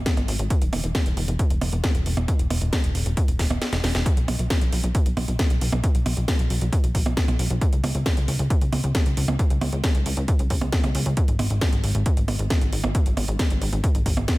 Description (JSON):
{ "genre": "uplifting trance", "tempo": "135 BPM", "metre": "4/4", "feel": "straight", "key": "unclear", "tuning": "A4 = 440 Hz", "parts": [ { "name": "plucky analog bass", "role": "bass", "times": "0.0-14.3 s", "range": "E1 to C#2", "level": "-24 LUFS", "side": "equal", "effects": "sidechain pumping" }, { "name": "electronic kick drum", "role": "drums", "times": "0.1-14.4 s", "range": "none", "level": "-22 LUFS", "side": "equal", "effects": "none" }, { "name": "techno drum kit", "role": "drums", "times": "0.1-14.4 s", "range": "hi-hat, percussion blips, snare drum", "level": "-27 LUFS", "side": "right 1 dB", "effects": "none" } ], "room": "little or no reverb", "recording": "none", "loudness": "-20 LUFS", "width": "side -20 dB against mid", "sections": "0.0-14.4 A section", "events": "drum fill 3.4-4.1; kick drops out 3.6-4.1", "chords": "none", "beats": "0.06 | 0.51 0.95 1.39 1.84 | 2.28 2.73 3.17 3.62 | 4.06 4.50 4.95 5.39 | 5.84 6.28 6.73 7.17 | 7.62 8.06 8.51 8.95 | 9.39 9.84 10.28 10.73 | 11.17 11.62 12.06 12.51 | 12.95 13.39 13.84 14.28" }